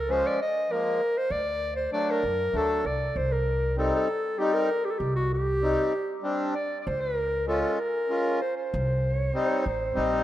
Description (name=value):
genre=klezmer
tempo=97 BPM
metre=3/4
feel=straight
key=unclear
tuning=A4 = 440 Hz
part: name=warm clarinet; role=melody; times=0.0-10.2 s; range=F#4 to Eb5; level=-27 LUFS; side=equal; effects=none
part: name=upright bass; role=bass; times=0.0-10.2 s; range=A1 to F#2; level=-30 LUFS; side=equal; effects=none
part: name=accordion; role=accompaniment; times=0.1-10.2 s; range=F3 to F4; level=-29 LUFS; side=left 2 dB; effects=none
room=wet plate reverb, RT60 3.0 s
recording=rough home demo mix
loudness=-24 LUFS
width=side -13 dB against mid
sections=0.0-10.2 A section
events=none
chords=0.0 Db; 1.3 D; 3.2 Cm; 6.9 Db; 8.7 Cm